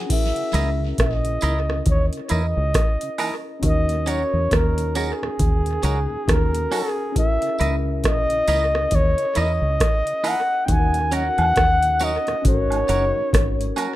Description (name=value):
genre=lovers rock reggae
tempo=68 BPM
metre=4/4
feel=swing 59% on 16ths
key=C# dorian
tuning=A4 = 440 Hz
part: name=breathy flugelhorn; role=melody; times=0.0-13.7 s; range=G#4 to G#5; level=-23 LUFS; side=equal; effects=tape echo, plate reverb
part: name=mellow tine electric piano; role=accompaniment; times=0.0-14.0 s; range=C#4 to G#5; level=-30 LUFS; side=left 3 dB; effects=wide subtle chorus, tape echo, plate reverb
part: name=booming analog drum machine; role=drums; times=0.1-14.0 s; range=crash cymbal, hi-hat, kick drum, rim click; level=-22 LUFS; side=equal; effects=tape echo
part: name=mellow tonewheel organ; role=accompaniment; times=0.4-13.9 s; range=D#2 to D#4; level=-36 LUFS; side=right 2 dB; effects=slow rotary speaker, plate reverb
part: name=twangy electric guitar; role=stabs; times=0.5-13.9 s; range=C#4 to D#5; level=-29 LUFS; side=right 4 dB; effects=plate reverb
part: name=deep dub fingered electric bass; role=bass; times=0.5-13.7 s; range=F#1 to E2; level=-22 LUFS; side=equal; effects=none
part: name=tambourine and woodblock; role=percussion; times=0.5-14.0 s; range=none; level=-31 LUFS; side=right 5 dB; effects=none
room=light reverb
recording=rough home demo mix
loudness=-18 LUFS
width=side -15 dB against mid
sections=0.1-14.0 A section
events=none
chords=0.1 C#m69; 3.6 D#m7; 7.2 C#m69; 10.7 D#m7; 12.4 G#9sus4